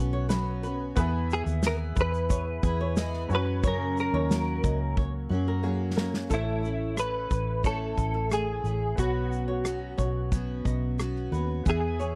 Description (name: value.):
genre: acoustic pop.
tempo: 90 BPM.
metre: 4/4.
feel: straight.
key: B major.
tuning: A4 = 441 Hz.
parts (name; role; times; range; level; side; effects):
clear upright piano; accompaniment; 0.0-12.2 s; F#3 to E5; -43 LUFS; equal; none.
picked steel-string acoustic guitar; accompaniment; 0.0-12.2 s; F#2 to A4; -36 LUFS; equal; double-tracked.
vintage muted fingered electric bass; bass; 0.0-12.2 s; A1 to F#2; -32 LUFS; equal; none.
flamenco guitar; arpeggios; 0.1-12.2 s; G#4 to D#5; -40 LUFS; equal; slapback echo.
unplugged drum kit; drums; 0.3-12.2 s; kick drum, rim click, shaker, snare drum; -31 LUFS; equal; none.
direct-recorded clean electric guitar; melody; 1.3-12.2 s; E4 to B4; -33 LUFS; equal; ensemble chorus, slapback echo.
room: little or no reverb.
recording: dry, close 1970s-style studio recording.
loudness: -28 LUFS.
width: mono.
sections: 0.0-6.3 A section; 6.3-12.2 B section.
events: drum fill 5.0-6.3.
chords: 0.0 Bsus2; 1.0 E; 3.3 F#; 6.3 A; 9.0 Bsus2.